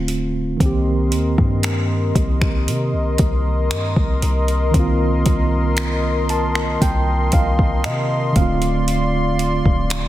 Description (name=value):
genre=contemporary R&B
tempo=58 BPM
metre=4/4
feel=straight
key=C dorian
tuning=A4 = 440 Hz
part: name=mellow tine electric piano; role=accompaniment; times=0.0-10.1 s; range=D3 to A5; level=-22 LUFS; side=right 3 dB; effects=fast stereo tremolo
part: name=warm 808-style bass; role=bass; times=0.0-10.1 s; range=D1 to C3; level=-20 LUFS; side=equal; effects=none
part: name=smooth R&B drum kit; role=drums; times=0.1-10.1 s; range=finger snaps, hi-hat, kick drum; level=-20 LUFS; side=equal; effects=soft clipping on snare
part: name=warm analog pad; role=sustained chords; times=0.6-10.1 s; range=F4 to C6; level=-24 LUFS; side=left 3 dB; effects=chorus
room=light reverb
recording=dense, heavily limited modern master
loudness=-16 LUFS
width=side -14 dB against mid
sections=0.0-10.1 A section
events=tine electric piano fill 5.8-8.9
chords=0.0 Dm7; 0.6 Cm7; 8.4 Dm7